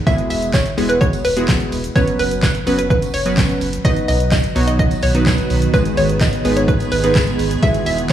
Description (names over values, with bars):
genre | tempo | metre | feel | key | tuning
dance-pop | 127 BPM | 4/4 | straight | G# minor | A4 = 439 Hz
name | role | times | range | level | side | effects
hollow square pluck | melody | 0.1-8.1 s | B4 to E5 | -21 LUFS | equal | chorus, tape echo
glassy digital keys | accompaniment | 0.1-8.1 s | F#3 to C#5 | -20 LUFS | right 1 dB | chorus, sidechain pumping
punchy analog drum machine | drums | 0.1-8.1 s | handclaps, hi-hat, kick drum, shaker, snare drum | -18 LUFS | equal | none
tambourine | percussion | 0.1-8.1 s | none | -36 LUFS | right 11 dB | none
warm sub bass | bass | 0.3-8.1 s | E1 to B1 | -21 LUFS | equal | sidechain pumping
granular cloud pad | sustained chords | 4.5-8.1 s | D#3 to G#4 | -23 LUFS | right 4 dB | built-in reverb, sidechain pumping
room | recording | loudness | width
light reverb | played on a big sound system in a bare room, large studio reverb, small room ambience | -14 LUFS | side -11 dB against mid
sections
0.0-8.1 A section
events
none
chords
0.1 Eadd9; 2.0 F#sus4; 3.8 B; 5.7 G#m